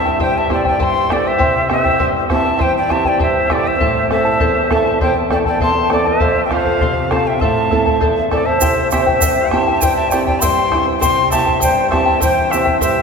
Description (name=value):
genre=andean folk, Andean ensemble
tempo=100 BPM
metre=2/4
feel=straight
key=unclear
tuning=A4 = 440 Hz
part: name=quena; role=melody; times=0.0-13.0 s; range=D5 to C6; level=-18 LUFS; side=left 1 dB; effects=none
part: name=bright reedy pan flute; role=second line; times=0.0-13.0 s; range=A4 to A5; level=-21 LUFS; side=equal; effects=none
part: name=charango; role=accompaniment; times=0.0-13.0 s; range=E4 to A5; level=-19 LUFS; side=left 3 dB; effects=none
part: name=nylon-string guitar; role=accompaniment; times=0.0-13.0 s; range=E2 to A4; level=-21 LUFS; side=right 4 dB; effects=none
part: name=bombo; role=percussion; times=0.2-13.0 s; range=none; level=-21 LUFS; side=left 1 dB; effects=none
part: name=egg shaker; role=percussion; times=8.6-13.0 s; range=none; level=-23 LUFS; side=right 6 dB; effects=none
room=wet cathedral reverb, RT60 5.2 s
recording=recorded in a church or concert hall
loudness=-13 LUFS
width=side -5 dB against mid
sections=0.0-8.6 A section; 8.6-13.0 A section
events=none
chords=0.0 C; 3.8 Am; 6.2 F; 7.4 Am; 8.6 C